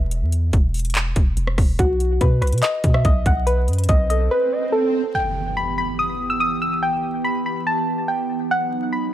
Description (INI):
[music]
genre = hip hop, trap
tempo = 143 BPM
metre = 4/4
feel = half-time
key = E harmonic minor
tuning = A4 = 441 Hz
[part]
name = long sustained 808-style bass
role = bass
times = 0.0-4.3 s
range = E1 to B2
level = -20 LUFS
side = equal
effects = none
[part]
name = trap drum kit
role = drums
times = 0.1-4.2 s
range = handclaps, hi-hat, kick drum, rim click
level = -19 LUFS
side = equal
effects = none
[part]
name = soft round pluck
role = melody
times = 1.8-9.1 s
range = F#4 to E6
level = -21 LUFS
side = equal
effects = chorus, digital delay
[part]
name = swell and impact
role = sound effects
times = 3.9-6.8 s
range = none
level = -28 LUFS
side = right 1 dB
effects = none
[part]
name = gliding portamento lead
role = second line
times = 4.1-4.7 s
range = A4 to D#5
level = -29 LUFS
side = right 4 dB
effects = chorus, digital delay
[part]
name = warbly tape-like pad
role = sustained chords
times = 5.1-9.1 s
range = E3 to G4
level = -25 LUFS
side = right 2 dB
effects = chorus, built-in reverb
[sound]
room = little or no reverb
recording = vinyl crackle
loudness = -18 LUFS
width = side -12 dB against mid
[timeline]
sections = 0.0-5.1 A section; 5.1-9.1 B section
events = break 0.0-1.8; swell 3.9-5.1; impact 5.1-6.8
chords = 0.0 N.C.; 1.8 B5; 5.1 Em; 8.5 B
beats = | 0.11 0.53 0.95 1.37 | 1.79 2.21 2.63 3.05 | 3.47 3.89 4.31 4.73 | 5.15 5.57 5.99 6.41 | 6.83 7.25 7.67 8.08 | 8.50 8.92